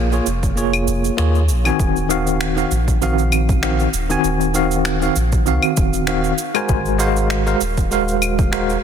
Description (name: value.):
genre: sunset chillout.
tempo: 98 BPM.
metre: 4/4.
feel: swing 54% on 16ths.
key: Eb dorian.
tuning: A4 = 440 Hz.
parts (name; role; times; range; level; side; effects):
bell-like tine electric piano; accompaniment; 0.0-8.8 s; Eb3 to Ab5; -19 LUFS; moving between left 5 dB and right 7 dB; fast stereo tremolo, auto-pan, digital delay.
round analog bass; bass; 0.0-8.8 s; Eb1 to Eb2; -20 LUFS; equal; none.
electronic cabasa, claves and finger snaps; drums; 0.1-8.8 s; none; -25 LUFS; equal; small room reverb, soft clipping on snare.
electronic kick drum; drums; 0.4-8.5 s; none; -20 LUFS; equal; small room reverb.
room: light reverb.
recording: dense, heavily limited modern master.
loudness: -15 LUFS.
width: side -8 dB against mid.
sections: 0.0-1.8 A section; 1.8-8.8 B section.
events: kick drops out 0.6-1.8.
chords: 0.0 Bbm7; 1.8 Ebm69.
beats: 0.57 1.18 | 1.80 2.41 3.02 3.63 | 4.25 4.86 5.47 6.08 | 6.69 7.31 7.92 8.53.